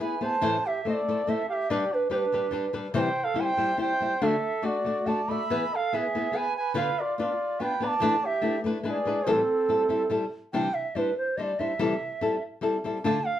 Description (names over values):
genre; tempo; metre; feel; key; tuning
mexican folk, mariachi; 143 BPM; 3/4; rubato; A minor; A4 = 440 Hz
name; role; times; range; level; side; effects
bright reedy bass bansuri; melody; 0.0-13.4 s; A4 to B5; -27 LUFS; right 3 dB; none
mellow trumpet; second line; 0.0-10.1 s; C4 to E5; -33 LUFS; right 2 dB; none
flamenco guitar; accompaniment; 0.0-13.2 s; A2 to D5; -28 LUFS; left 3 dB; none
room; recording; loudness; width
wet studio reverb, RT60 0.6 s; heard from further back in the room; -24 LUFS; side -11 dB against mid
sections
0.0-10.5 A section; 10.5-13.4 B section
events
none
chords
0.4 Am; 1.7 G; 2.9 C; 4.2 D; 5.5 E; 6.8 Bdim/D; 8.0 E7sus4; 8.8 E7; 9.3 Am7; 10.5 Cadd9; 11.8 Am7/C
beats
0.00 | 0.43 0.86 1.28 | 1.70 2.11 2.53 | 2.95 3.37 3.79 | 4.21 4.63 5.06 | 5.49 5.91 6.34 | 6.76 7.18 7.59 | 8.01 8.43 8.85 | 9.26 9.68 10.11 | 10.53 10.96 11.38 | 11.80 12.22 12.63 | 13.05